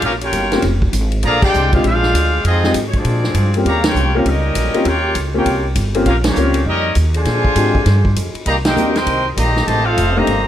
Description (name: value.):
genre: jazz, big band swing.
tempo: 199 BPM.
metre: 4/4.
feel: swing 62% on 8ths.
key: unclear.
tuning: A4 = 440 Hz.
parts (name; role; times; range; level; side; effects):
clear trumpet section; melody; 0.0-10.5 s; Bb3 to C6; -19 LUFS; equal; none.
warm trombone section; second line; 0.0-10.5 s; C3 to Ab4; -22 LUFS; equal; none.
upright bass; bass; 0.0-10.5 s; F1 to Bb2; -18 LUFS; equal; none.
swinging big-band drum kit; drums; 0.0-10.4 s; crash cymbal, hi-hat, kick drum, ride cymbal, snare drum; -21 LUFS; equal; none.
warm concert grand piano; accompaniment; 0.5-10.3 s; Ab3 to G4; -20 LUFS; left 2 dB; none.
room: light reverb.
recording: none.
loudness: -13 LUFS.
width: side -11 dB against mid.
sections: 0.0-10.5 A section.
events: band accent 1.4, 3.8, 6.2, 8.6.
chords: 0.0 Bbm13; 1.2 Bb13; 2.4 Fm7; 3.0 Bb13; 3.7 Eb13; 7.3 Bb13; 8.5 Cm7; 9.7 F13.